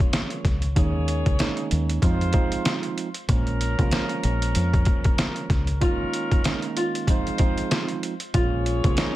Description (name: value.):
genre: hip hop, boom-bap hip-hop.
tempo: 95 BPM.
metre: 4/4.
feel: swing 57% on 16ths.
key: unclear.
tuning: A4 = 441 Hz.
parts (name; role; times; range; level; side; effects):
flamenco guitar; melody; 0.0-0.7, 5.8-9.2 s; Eb4 to F4; -29 LUFS; equal; high-pass filter, low-pass filter, plate reverb, digital delay.
mellow tine electric piano; accompaniment; 0.0-9.2 s; Eb3 to F4; -29 LUFS; right 6 dB; high-pass filter, low-pass filter, plate reverb.
dark horn section; stabs; 0.0-9.2 s; Eb3 to Db5; -32 LUFS; left 2 dB; high-pass filter, low-pass filter, plate reverb, digital delay.
trip hop sampler-style drum kit; drums; 0.0-9.1 s; hi-hat, kick drum, snare drum; -23 LUFS; equal; none.
deep dub fingered electric bass; bass; 0.5-9.0 s; Bb1 to F2; -24 LUFS; equal; none.
room: light reverb.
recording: none.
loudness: -21 LUFS.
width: side -15 dB against mid.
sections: 0.0-9.2 A section.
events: none.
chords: 0.0 Bbm7; 0.8 Eb7sus4; 2.0 Fm7; 3.3 Bbm7; 5.8 Eb7sus4; 7.1 Fm7; 8.3 Bbm7.